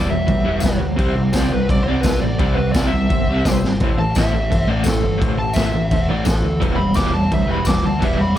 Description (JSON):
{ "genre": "garage rock duo or trio", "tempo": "171 BPM", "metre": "4/4", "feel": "straight", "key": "E minor", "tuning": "A4 = 439 Hz", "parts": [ { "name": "fuzz lead guitar", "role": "melody", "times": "0.0-8.4 s", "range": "A4 to D6", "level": "-24 LUFS", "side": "equal", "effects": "distortion" }, { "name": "combo organ", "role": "sustained chords", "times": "0.0-8.4 s", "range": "G4 to G5", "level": "-32 LUFS", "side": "left 1 dB", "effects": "none" }, { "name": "crunchy overdriven guitar", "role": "riff", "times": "0.0-8.4 s", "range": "A2 to C4", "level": "-20 LUFS", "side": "equal", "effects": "tremolo" }, { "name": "growling picked electric bass", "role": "bass", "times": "0.0-8.4 s", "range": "E1 to D2", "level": "-23 LUFS", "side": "equal", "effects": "overdrive, tube saturation" }, { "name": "raw garage drum kit", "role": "drums", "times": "0.3-8.1 s", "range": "crash cymbal, kick drum, snare drum", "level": "-20 LUFS", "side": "equal", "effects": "none" }, { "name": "tambourine", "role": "percussion", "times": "0.6-7.7 s", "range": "none", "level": "-34 LUFS", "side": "left 4 dB", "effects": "none" } ], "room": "moderate studio reverb, RT60 0.5 s", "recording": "none", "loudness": "-15 LUFS", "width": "side -12 dB against mid", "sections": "0.0-8.4 A section", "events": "lead electric guitar solo 0.0-8.4; drum fill 3.6", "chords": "0.0 Em; 1.0 C; 3.8 Am; 6.6 Em", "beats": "0.28 0.63 | 0.98 1.34 1.69 2.04 | 2.39 2.74 3.09 3.44 | 3.79 4.15 4.50 4.85 | 5.20 5.55 5.90 6.26 | 6.61 6.96 7.31 7.67 | 8.02 8.37" }